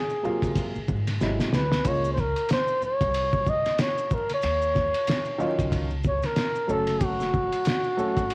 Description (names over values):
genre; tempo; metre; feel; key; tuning
hip hop, jazz-hop; 93 BPM; 4/4; swing 58% on 16ths; Db major; A4 = 439 Hz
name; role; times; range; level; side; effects
breathy flugelhorn; melody; 0.0-8.3 s; Gb4 to Eb5; -26 LUFS; equal; none
maracas and congas; percussion; 0.1-8.3 s; none; -42 LUFS; left 1 dB; none
dark grand piano; accompaniment; 0.2-8.2 s; C3 to A4; -29 LUFS; right 1 dB; cassette tape
upright bass; bass; 0.4-8.3 s; Gb1 to Ab2; -30 LUFS; equal; none
cloth-damped thuddy drum kit; drums; 0.4-8.3 s; hi-hat, kick drum, ride cymbal, snare drum; -28 LUFS; equal; none
room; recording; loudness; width
light reverb; home recording on cassette, vinyl crackle; -22 LUFS; side -29 dB against mid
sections
0.0-8.3 A section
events
drum fill 1.2-1.9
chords
0.0 Ab13; 1.2 Ab7alt; 1.9 Db6; 4.4 Ebm9; 6.7 Gbm